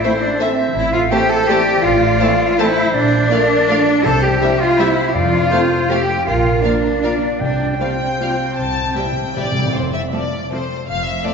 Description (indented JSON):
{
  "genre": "classical",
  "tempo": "144-177 BPM",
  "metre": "3/4",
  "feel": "rubato",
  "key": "F major",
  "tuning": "A4 = 440 Hz",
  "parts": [
    { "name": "rich chamber violin section", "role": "melody", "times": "0.0-11.3 s", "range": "C5 to A5", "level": "-27 LUFS", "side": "left 3 dB", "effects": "none" },
    { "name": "clear clarinet", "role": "second line", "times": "0.0-9.6 s", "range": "Bb4 to G5", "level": "-21 LUFS", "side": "left 1 dB", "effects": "none" },
    { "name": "hollow concert flute", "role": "second line", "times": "0.0-9.5 s", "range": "C5 to A5", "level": "-22 LUFS", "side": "left 1 dB", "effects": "none" },
    { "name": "warm chamber violin section", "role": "second line", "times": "0.0-11.3 s", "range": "C4 to A5", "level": "-28 LUFS", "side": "left 4 dB", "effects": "none" },
    { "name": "rich chamber viola section", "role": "accompaniment", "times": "0.0-11.3 s", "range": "F3 to Bb3", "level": "-26 LUFS", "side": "right 1 dB", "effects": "none" },
    { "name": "bright trombone section", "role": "sustained chords", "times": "0.0-9.5 s", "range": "C3 to Bb3", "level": "-28 LUFS", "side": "right 3 dB", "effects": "none" },
    { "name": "dark French horn section", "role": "sustained chords", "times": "0.0-9.5 s", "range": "Bb3 to A4", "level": "-27 LUFS", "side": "left 3 dB", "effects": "none" },
    { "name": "concert harp", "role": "arpeggios", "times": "0.0-11.3 s", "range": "F2 to D6", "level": "-25 LUFS", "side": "left 4 dB", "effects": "none" },
    { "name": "rich chamber cello section", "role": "bass", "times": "0.0-11.2 s", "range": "F2 to A4", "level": "-18 LUFS", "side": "right 1 dB", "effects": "none" },
    { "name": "rich chamber double bass section", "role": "bass", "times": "0.8-11.2 s", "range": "F1 to F2", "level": "-25 LUFS", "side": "right 3 dB", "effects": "none" },
    { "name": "timpani", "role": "percussion", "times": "4.1-9.7 s", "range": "F2 to C3", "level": "-26 LUFS", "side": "equal", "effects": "none" }
  ],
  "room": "wet scoring stage reverb, RT60 1.7 s",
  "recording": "recorded in a church or concert hall, nothing above 7.8 kHz",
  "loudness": "-14 LUFS",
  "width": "side -5 dB against mid",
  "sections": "0.0-9.7 A section; 9.7-11.3 B section",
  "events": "timpani fill 8.6-9.7",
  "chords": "0.0 Am; 2.9 Bbmaj7; 4.0 C; 5.2 F; 6.3 Bb; 7.4 Csus4; 8.6 C; 9.7 F"
}